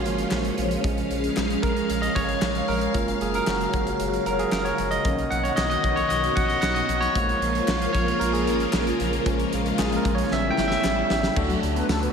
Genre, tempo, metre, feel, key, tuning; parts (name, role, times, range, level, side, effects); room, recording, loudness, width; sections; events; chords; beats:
1980s-style pop; 114 BPM; 4/4; straight; A4 = 440 Hz
barky tine electric piano; accompaniment; 0.0-12.1 s; D#3 to G5; -24 LUFS; right 1 dB; lush chorus
phased string machine; sustained chords; 0.0-12.1 s; B2 to E#5; -27 LUFS; left 1 dB; ensemble chorus, phaser
round analog bass; bass; 0.0-12.1 s; E#1 to D2; -30 LUFS; left 1 dB
big rock drum kit; drums; 0.1-12.1 s; crash cymbal, hi-hat, kick drum, snare drum, tambourine; -28 LUFS; equal
group handclap; percussion; 0.3-11.0 s; -41 LUFS; left 6 dB
mellow synth brass; stabs; 11.5-12.1 s; F#3 to B4; -29 LUFS; left 4 dB; chorus
wet lush hall reverb, RT60 2.8 s; dreamy mix soaked in reverb; -21 LUFS; side -6 dB against mid
0.0-11.4 A section
tine electric piano solo 0.0-11.4; drum fill 10.3-11.4
0.0 A#m7; 2.9 F#maj7; 5.1 Bmaj7; 7.2 A#m7; 10.3 A7; 11.4 D
0.32 | 0.84 1.37 1.89 2.42 | 2.95 3.47 4.00 4.53 | 5.05 5.58 6.10 6.63 | 7.16 7.68 8.21 8.74 | 9.26 9.79 10.31 10.84 | 11.37 11.89